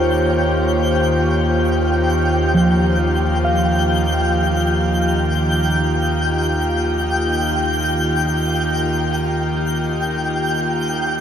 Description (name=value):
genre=ambient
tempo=free time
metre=none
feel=none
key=Eb major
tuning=A4 = 439 Hz
part: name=airy breathy pad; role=sustained chords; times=0.0-11.2 s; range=Eb3 to G4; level=-20 LUFS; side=right 1 dB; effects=chorus
part: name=muted felt-like synth keys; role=arpeggios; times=0.0-11.2 s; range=F3 to F5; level=-23 LUFS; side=equal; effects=chorus, diffuse ambient delay
part: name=warm sub bass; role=bass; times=0.0-11.2 s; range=Eb2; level=-23 LUFS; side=left 1 dB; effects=none
part: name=organ-like drone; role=drone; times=0.9-11.2 s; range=Eb3 to Eb4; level=-29 LUFS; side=equal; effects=none
part: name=twinkling granular texture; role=texture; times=0.0-11.2 s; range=G5 to G6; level=-22 LUFS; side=left 1 dB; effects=built-in reverb
room=wet shimmer reverb, RT60 8.3 s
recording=none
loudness=-16 LUFS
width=side -8 dB against mid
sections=0.0-11.2 A section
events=none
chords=0.0 Eb7